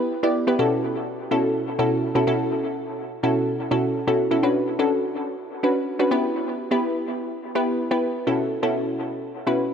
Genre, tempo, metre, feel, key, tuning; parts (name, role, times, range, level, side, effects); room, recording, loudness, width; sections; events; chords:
pop; 125 BPM; 4/4; straight; B minor; A4 = 441 Hz
glassy wavetable pluck; solo; 0.0-9.7 s; B2 to D5; -21 LUFS; equal; chorus, dub echo
moderate plate reverb, RT60 3.4 s; echo-heavy mix, high-pass filter; -21 LUFS; side -7 dB against mid
0.0-4.4 A section; 4.4-9.7 B section
build-up 4.4-9.7
0.0 Em/B; 0.6 F#m7/B; 4.4 Bmadd9; 6.1 Em/B; 8.3 F#m7/B